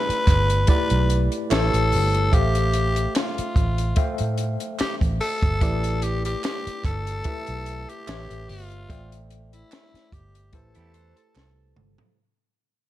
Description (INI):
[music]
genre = lush 1970s-style soul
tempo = 73 BPM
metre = 4/4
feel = swing 54% on 16ths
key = A minor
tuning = A4 = 440 Hz
[part]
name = growling tenor saxophone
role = melody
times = 0.0-11.7 s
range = E4 to B4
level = -27 LUFS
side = left 2 dB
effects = none
[part]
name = mellow tine electric piano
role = accompaniment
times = 0.0-12.2 s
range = A3 to G5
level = -30 LUFS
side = left 1 dB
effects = overdrive, medium stereo tremolo
[part]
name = vintage muted fingered electric bass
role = bass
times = 0.1-12.0 s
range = G1 to A2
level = -24 LUFS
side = right 1 dB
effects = none
[part]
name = compact cocktail drum kit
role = drums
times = 0.1-12.2 s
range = hi-hat, kick drum, snare drum, toms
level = -23 LUFS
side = equal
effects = none
[part]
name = group handclap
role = percussion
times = 0.3-11.6 s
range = none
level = -39 LUFS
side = right 10 dB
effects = none
[part]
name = electric guitar through a small old amp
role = riff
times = 10.8-12.1 s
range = E4 to C5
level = -66 LUFS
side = right 9 dB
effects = none
[sound]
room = small room ambience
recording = none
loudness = -20 LUFS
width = side -14 dB against mid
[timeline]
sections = 0.0-12.2 A section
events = fade-out 0.0-12.2; drum fill 11.4-12.2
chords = 0.0 Em7; 1.5 A7; 2.3 G13sus4; 5.6 Em7; 8.1 A7; 8.9 D9sus4/A; 10.5 Am7